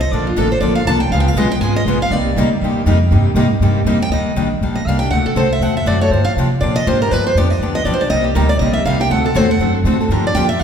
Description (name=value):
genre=acoustic string swing (jazz manouche)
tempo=240 BPM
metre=4/4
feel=swing 57% on 8ths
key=C minor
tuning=A4 = 440 Hz
part: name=picked steel-string acoustic guitar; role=melody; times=0.0-10.6 s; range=F4 to A5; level=-19 LUFS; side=right 1 dB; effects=none
part: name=upright bass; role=bass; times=0.0-10.6 s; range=Ab1 to C3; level=-17 LUFS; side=equal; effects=none
part: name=picked steel-string acoustic guitar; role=accompaniment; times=0.1-10.5 s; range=C3 to A4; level=-18 LUFS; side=left 3 dB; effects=none
part: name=picked steel-string acoustic guitar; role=accompaniment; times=0.1-4.0, 8.1-10.6 s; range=C3 to A4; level=-22 LUFS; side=right 5 dB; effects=none
room=wet recital hall reverb, RT60 1.6 s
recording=recorded in a church or concert hall, faint mains hum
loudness=-13 LUFS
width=side -7 dB against mid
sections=0.0-4.1 A section; 4.1-10.6 A section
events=steel-string acoustic guitar solo 0.0-10.6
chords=0.1 Bbmaj7; 1.1 Db6; 2.1 Cm11; 4.1 Ebmaj7; 5.1 D7; 6.1 Gm7; 7.1 G7; 8.1 Cm7; 9.1 D7; 10.1 Gm7